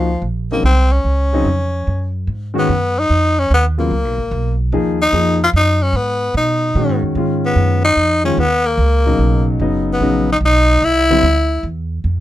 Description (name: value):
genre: modal jazz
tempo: 147 BPM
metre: 3/4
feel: swing 66% on 8ths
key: G# dorian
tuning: A4 = 437 Hz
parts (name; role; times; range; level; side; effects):
- growling tenor saxophone; melody; 0.0-11.7 s; F3 to E#4; -16 LUFS; left 1 dB; none
- warm concert grand piano; accompaniment; 0.0-11.2 s; B2 to G#4; -18 LUFS; left 2 dB; none
- upright bass; bass; 0.0-12.2 s; F#1 to B2; -17 LUFS; right 1 dB; none
room: little or no reverb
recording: close, detailed microphones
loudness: -13 LUFS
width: side -14 dB against mid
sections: 0.0-2.3 A section; 2.3-12.1 B section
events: none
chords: 0.0 Bbm; 2.3 G#m9; 7.2 B; 10.8 C